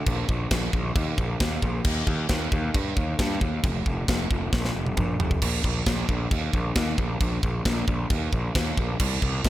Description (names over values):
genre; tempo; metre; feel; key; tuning
heavy metal; 134 BPM; 4/4; straight; unclear; A4 = 440 Hz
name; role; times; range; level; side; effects
fuzz picked electric bass; bass; 0.1-9.5 s; F1 to G2; -27 LUFS; equal; overdrive
tight metal drum kit; drums; 0.1-9.5 s; china cymbal, crash cymbal, kick drum, snare drum, toms; -25 LUFS; equal; none
room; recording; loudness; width
little or no reverb; none; -23 LUFS; side -14 dB against mid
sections
0.0-9.5 A section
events
drum fill 4.5-5.4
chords
none